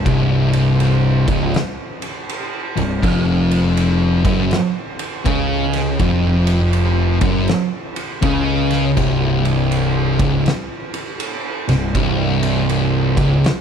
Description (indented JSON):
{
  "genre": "stoner and doom metal",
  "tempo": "81 BPM",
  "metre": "4/4",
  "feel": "swing 64% on 8ths",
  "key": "unclear",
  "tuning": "A4 = 440 Hz",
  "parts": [
    { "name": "fuzz picked electric bass", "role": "bass", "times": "0.0-13.4 s", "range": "C1 to Db2", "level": "-22 LUFS", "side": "equal", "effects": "overdrive" },
    { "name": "thick fuzz guitar", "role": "riff", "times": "0.1-13.4 s", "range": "C2 to Db3", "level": "-18 LUFS", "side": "left 9 dB", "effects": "distortion" },
    { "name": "thick fuzz guitar", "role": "riff", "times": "0.1-13.4 s", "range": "C2 to Db3", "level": "-19 LUFS", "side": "right 8 dB", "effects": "distortion" },
    { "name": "oversized low-tuned drum kit", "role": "drums", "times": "0.1-13.6 s", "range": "crash cymbal, kick drum, ride cymbal, snare drum", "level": "-22 LUFS", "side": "equal", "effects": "none" }
  ],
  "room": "little or no reverb",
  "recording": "none",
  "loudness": "-15 LUFS",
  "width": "side -7 dB against mid",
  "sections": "0.0-13.6 A section",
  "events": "none",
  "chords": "0.0 N.C.; 3.0 Dbadd11/F; 9.0 Abadd11/C (rootless)"
}